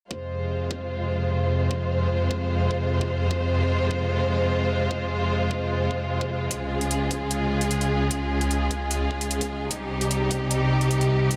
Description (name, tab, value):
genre	heavy wobble dubstep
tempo	150 BPM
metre	4/4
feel	half-time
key	F minor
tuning	A4 = 440 Hz
part	warm studio string section	sustained chords	0.1-11.4 s	C2 to C5	-25 LUFS	equal	sidechain pumping
part	electronic kick drum	drums	0.1-11.4 s	none	-39 LUFS	equal	high-pass filter on kick
part	electronic hi-hat	drums	6.5-11.4 s	none	-33 LUFS	equal	none
room	wet huge ambient reverb, RT60 8.1 s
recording	dreamy mix soaked in reverb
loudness	-25 LUFS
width	mono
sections	0.1-11.4 A section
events	none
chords	0.1 Fm; 6.5 Db; 9.7 Cm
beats	| 0.11 0.51 0.91 1.31 | 1.71 2.11 2.51 2.91 | 3.31 3.71 4.11 4.51 | 4.91 5.31 5.71 6.11 | 6.51 6.91 7.31 7.71 | 8.11 8.51 8.91 9.31 | 9.71 10.11 10.51 10.91 | 11.31